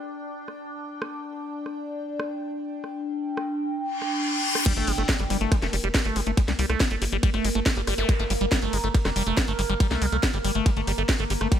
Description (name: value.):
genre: psychedelic trance.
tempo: 140 BPM.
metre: 4/4.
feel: straight.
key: G minor.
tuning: A4 = 440 Hz.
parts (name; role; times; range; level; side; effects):
overtone-sweeping drone; sustained chords; 0.0-11.6 s; Bb3 to G5; -31 LUFS; right 1 dB; chorus, built-in reverb, sidechain pumping.
garage drum kit; drums; 0.5-11.6 s; crash cymbal, hi-hat, ride cymbal, rim click, snare drum; -29 LUFS; equal; none.
reverse cymbal, impact and zap; sound effects; 3.9-8.1 s; none; -30 LUFS; left 2 dB; none.
liquid acid bass; riff; 4.7-11.6 s; G3 to G4; -28 LUFS; moving between left 6 dB and right 2 dB; phaser, auto-pan, sidechain pumping, digital delay.
electronic kick drum; drums; 4.7-11.6 s; none; -22 LUFS; equal; none.
tight sequencer bass; bass; 4.8-11.5 s; F1 to C2; -27 LUFS; equal; none.
room: light reverb.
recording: none.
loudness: -23 LUFS.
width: side -10 dB against mid.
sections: 0.0-4.7 A section; 4.7-11.6 B section.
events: filter sweep on drum 0.0-4.7; reverse cymbal 3.9-4.7; drop 4.7-11.6; impact 4.7-6.4.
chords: 0.0 G5.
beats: 0.37 0.80 | 1.23 1.66 2.09 2.52 | 2.94 3.37 3.80 4.23 | 4.66 5.09 5.52 5.95 | 6.37 6.80 7.23 7.66 | 8.09 8.52 8.95 9.37 | 9.80 10.23 10.66 11.09 | 11.52.